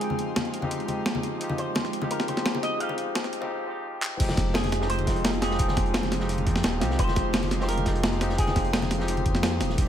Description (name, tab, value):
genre	liquid drum and bass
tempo	172 BPM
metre	4/4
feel	straight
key	F minor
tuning	A4 = 440 Hz
part	electric guitar with an envelope filter	melody	0.0-8.7 s	Ab4 to F5	-33 LUFS	equal	wide subtle chorus, low-pass filter, dub echo
part	barky tine electric piano	accompaniment	0.0-9.9 s	Eb3 to G5	-30 LUFS	left 1 dB	overdrive, ping-pong delay
part	airy breathy pad	sustained chords	0.0-9.9 s	Ab3 to Eb6	-37 LUFS	right 4 dB	chorus, sidechain pumping
part	breakbeat sampler-style drum kit	drums	0.0-9.9 s	crash cymbal, handclaps, hi-hat, snare drum	-29 LUFS	equal	studio reverb
part	congas	percussion	0.1-9.2 s	none	-36 LUFS	left 3 dB	none
part	dark detuned saw bass	bass	4.2-9.9 s	Eb1 to F2	-29 LUFS	equal	none
part	crunchy breakbeat drum kit	drums	4.2-9.9 s	hi-hat, snare drum	-34 LUFS	right 1 dB	high-pass filter on hats, studio reverb, high-pass filter on snare, high-pass filter on room
part	electronic kick drum	drums	4.2-9.9 s	none	-26 LUFS	equal	studio reverb
room	light reverb, studio ambience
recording	high-pass filter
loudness	-24 LUFS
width	side -10 dB against mid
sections	0.0-4.2 A section; 4.2-9.9 B section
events	build-up 0.0-4.2; filter sweep on clean electric guitar 0.0-4.2; filter sweep 0.0-4.2; break 3.5-4.2; drum fill 4.0; drop 4.2-9.9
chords	0.0 Fm7